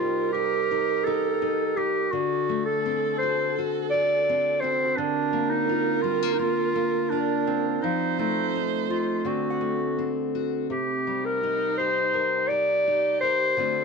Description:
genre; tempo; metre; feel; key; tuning
acoustic folk-pop ballad; 84 BPM; 4/4; straight; unclear; A4 = 439 Hz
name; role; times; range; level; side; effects
warm clarinet; melody; 0.0-13.8 s; D4 to D5; -24 LUFS; equal; none
dark viola; second line; 0.0-13.8 s; Eb4 to C5; -30 LUFS; right 16 dB; none
fingerpicked steel-string acoustic guitar; accompaniment; 0.0-13.8 s; C3 to C5; -30 LUFS; left 13 dB; none
concert harp; arpeggios; 1.1-12.3 s; A3 to F#5; -34 LUFS; right 12 dB; none
room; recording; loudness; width
light reverb; 1960s-style stereo with parts hard left and right; -22 LUFS; side -4 dB against mid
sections
0.0-10.7 A section; 10.7-13.8 A section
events
none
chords
0.0 Cm7; 2.1 D7; 5.0 Bb/D; 7.8 F7; 9.3 D7; 10.7 Cm7

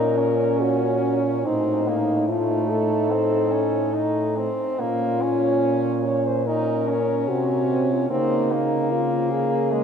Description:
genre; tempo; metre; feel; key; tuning
classical, lyrical piece for horn quartet; 72 BPM; 4/4; rubato; Bb minor; A4 = 439 Hz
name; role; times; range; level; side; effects
dark French horn; melody; 0.0-9.8 s; Eb4 to Db5; -24 LUFS; left 6 dB; none
mellow French horn; second line; 0.0-9.8 s; Bb3 to Eb4; -26 LUFS; right 7 dB; none
warm French horn; accompaniment; 0.0-9.8 s; Ab3 to Eb4; -26 LUFS; left 1 dB; none
dark French horn; bass; 0.0-9.8 s; A2 to Db3; -27 LUFS; right 3 dB; none
room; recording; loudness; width
wet cathedral reverb, RT60 5.4 s; none; -20 LUFS; side -7 dB against mid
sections
0.0-9.8 A section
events
none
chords
0.0 Bbm; 1.5 Adim; 4.8 Bbm; 8.1 Bbm/Db

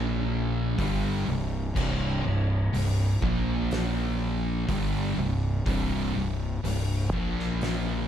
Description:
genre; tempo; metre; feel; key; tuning
stoner and doom metal; 62 BPM; 4/4; straight; unclear; A4 = 440 Hz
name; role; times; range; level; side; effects
sludgy distorted guitar; riff; 0.0-8.1 s; C2 to Bb3; -34 LUFS; equal; overdrive
thick fuzz guitar; riff; 0.0-8.1 s; C2 to Bb3; -30 LUFS; left 5 dB; distortion
thick fuzz guitar; riff; 0.0-8.1 s; C2 to Bb3; -31 LUFS; right 5 dB; distortion
fuzz fingered electric bass; bass; 0.0-8.1 s; C1 to Bb1; -31 LUFS; equal; overdrive
oversized low-tuned drum kit; drums; 0.8-7.8 s; crash cymbal, hi-hat, kick drum, snare drum; -34 LUFS; equal; none
room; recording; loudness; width
light reverb, studio ambience; dark, warm production; -25 LUFS; side -10 dB against mid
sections
0.0-8.1 A section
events
none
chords
0.0 Bb5; 0.8 C5; 3.2 Bb5; 4.7 C5; 7.1 Bb5

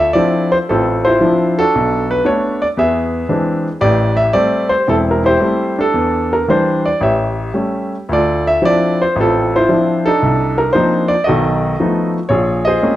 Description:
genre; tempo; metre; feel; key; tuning
solo jazz; 114 BPM; 4/4; swing 69% on 8ths, rubato; unclear; A4 = 440 Hz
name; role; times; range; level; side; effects
warm baby grand piano; solo; 0.0-13.0 s; E1 to E5; -12 LUFS; equal; none
room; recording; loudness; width
moderate large studio reverb, RT60 0.9 s; none; -12 LUFS; side -14 dB against mid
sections
0.0-13.0 A section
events
none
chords
0.0 Dm9; 1.7 Bm7; 2.8 E7b13; 3.8 Am7; 7.0 A7; 8.1 Dm9; 10.2 Cm11; 11.3 B7#11; 12.3 Bbm9

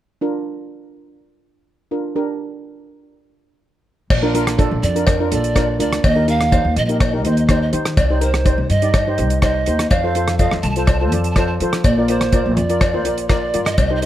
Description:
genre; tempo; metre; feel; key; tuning
calypso; 124 BPM; 4/4; straight; Bb major; A4 = 440 Hz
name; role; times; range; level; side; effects
steel pan; accompaniment; 0.2-14.1 s; D4 to Eb5; -22 LUFS; equal; none
upright bass; bass; 4.1-14.1 s; Bb1 to F3; -19 LUFS; equal; none
damped 70s drum kit; drums; 4.1-14.1 s; crash cymbal, hi-hat, kick drum, rim click; -18 LUFS; equal; none
cowbell; percussion; 4.1-13.9 s; none; -26 LUFS; left 2 dB; none
breathy polished pan flute; melody; 4.8-14.1 s; Bb4 to A5; -22 LUFS; right 3 dB; none
room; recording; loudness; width
little or no reverb; none; -15 LUFS; side -13 dB against mid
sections
0.2-4.1 A section; 4.1-14.1 B section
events
none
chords
0.2 Bb; 2.2 Gm; 4.1 Bbmaj7; 6.0 Ebadd9; 8.0 Cm; 9.9 F; 11.8 Bb

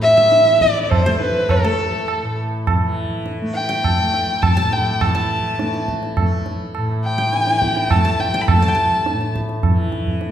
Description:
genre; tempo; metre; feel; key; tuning
indian classical, Hindustani; 103 BPM; 3/4; straight; unclear; A4 = 441 Hz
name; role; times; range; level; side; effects
warm violin; melody; 0.0-9.4 s; A4 to B5; -17 LUFS; equal; none
tanpura; drone; 0.0-10.3 s; A2 to A3; -24 LUFS; equal; none
tabla; percussion; 0.0-10.3 s; none; -20 LUFS; right 2 dB; none
koto; second line; 0.2-10.0 s; A4 to A5; -28 LUFS; equal; none
room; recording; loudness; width
wet recital hall reverb, RT60 1.6 s; heard from further back in the room; -16 LUFS; side -10 dB against mid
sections
0.0-5.0 A section; 5.0-10.3 B section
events
none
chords
none

